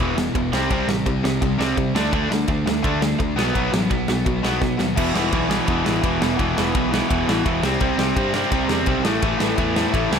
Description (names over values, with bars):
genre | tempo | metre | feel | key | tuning
punk rock | 169 BPM | 4/4 | straight | unclear | A4 = 441 Hz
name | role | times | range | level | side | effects
crunchy overdriven guitar | riff | 0.0-10.2 s | E2 to D4 | -26 LUFS | equal | none
distorted electric guitar | riff | 0.0-10.2 s | E2 to D4 | -24 LUFS | left 11 dB | overdrive
overdriven electric guitar | riff | 0.0-10.2 s | E2 to D4 | -24 LUFS | right 12 dB | none
picked electric bass | bass | 0.0-10.2 s | E1 to C3 | -27 LUFS | equal | none
big rock drum kit | drums | 0.0-10.2 s | crash cymbal, kick drum, ride cymbal, snare drum | -24 LUFS | equal | none
room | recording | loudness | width
little or no reverb | none | -18 LUFS | side -7 dB against mid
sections
0.0-5.0 A section; 5.0-10.2 B section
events
drum fill 4.6-5.0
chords
0.0 E5; 0.5 C5; 2.0 D5; 3.4 B5; 5.0 E5; 7.6 C5; 9.0 A5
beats
0.35 | 0.70 1.06 1.42 1.77 | 2.13 2.48 2.84 3.20 | 3.55 3.91 4.26 4.62 | 4.97 5.33 5.68 6.04 | 6.39 6.74 7.10 7.45 | 7.80 8.16 8.51 8.87 | 9.22 9.58 9.93